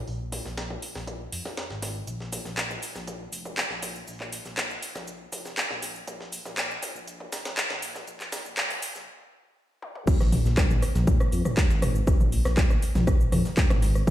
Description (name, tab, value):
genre	melodic techno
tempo	120 BPM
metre	4/4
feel	straight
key	unclear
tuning	A4 = 440 Hz
part	dark detuned saw bass	bass	0.1-14.1 s	F1 to F2	-29 LUFS	equal	sidechain pumping
part	breakbeat sampler-style drum kit	drums	0.1-14.1 s	hi-hat, snare drum	-39 LUFS	equal	sidechain pumping on hats, high-pass filter on hats, high-pass filter on snare
part	house drum kit	drums	0.3-14.1 s	crash cymbal, handclaps, hi-hat, rim click, shaker, toms	-30 LUFS	equal	overdrive, high-pass filter on toms, high-pass filter on hats, high-pass filter on perc, high-pass filter on snare, high-pass filter on cymbals, high-pass filter on room
part	electronic kick drum	drums	10.1-14.1 s	none	-22 LUFS	equal	none
room	light reverb, digital ambience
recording	played on a big sound system in a bare room, large studio reverb, high-pass filter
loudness	-24 LUFS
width	side -14 dB against mid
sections	0.0-10.1 A section; 10.1-14.1 B section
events	build-up 0.0-10.1; filter sweep 0.0-10.1; stop 9.1-10.1; drum fill 9.8; drop 10.1-14.1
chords	none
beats	| 0.07 0.57 1.07 1.57 | 2.07 2.57 3.07 3.57 | 4.07 4.57 5.07 5.57 | 6.07 6.57 7.07 7.57 | 8.07 8.57 9.07 9.57 | 10.07 10.57 11.07 11.57 | 12.07 12.57 13.07 13.57 | 14.07